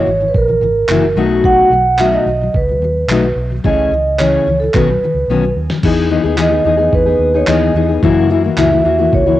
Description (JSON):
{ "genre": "acoustic pop", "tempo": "109 BPM", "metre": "4/4", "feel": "straight", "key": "E major", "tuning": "A4 = 440 Hz", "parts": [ { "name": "vibraphone with soft mallets", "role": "melody", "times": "0.0-9.4 s", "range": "A4 to F#5", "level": "-14 LUFS", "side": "right 2 dB", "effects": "cassette tape" }, { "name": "fingerpicked steel-string acoustic guitar", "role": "accompaniment", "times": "0.0-9.4 s", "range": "F#2 to G#4", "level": "-15 LUFS", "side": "left 5 dB", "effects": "cassette tape" }, { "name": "vintage muted fingered electric bass", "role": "bass", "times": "0.1-9.4 s", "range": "F#1 to F#2", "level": "-19 LUFS", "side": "right 1 dB", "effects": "none" }, { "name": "dusty soul sampler-style drum kit", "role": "drums", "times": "0.3-9.3 s", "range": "crash cymbal, handclaps, kick drum, snare drum", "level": "-19 LUFS", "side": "right 1 dB", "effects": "cassette tape" } ], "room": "light reverb, digital ambience", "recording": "home recording on cassette", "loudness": "-11 LUFS", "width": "side -14 dB against mid", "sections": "0.0-5.8 A section; 5.8-9.4 B section", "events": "drum fill 5.3-5.8", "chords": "0.0 F#7; 1.2 B7; 3.6 Amaj7/C#; 4.7 Badd9; 5.8 Emaj7; 8.0 F#7" }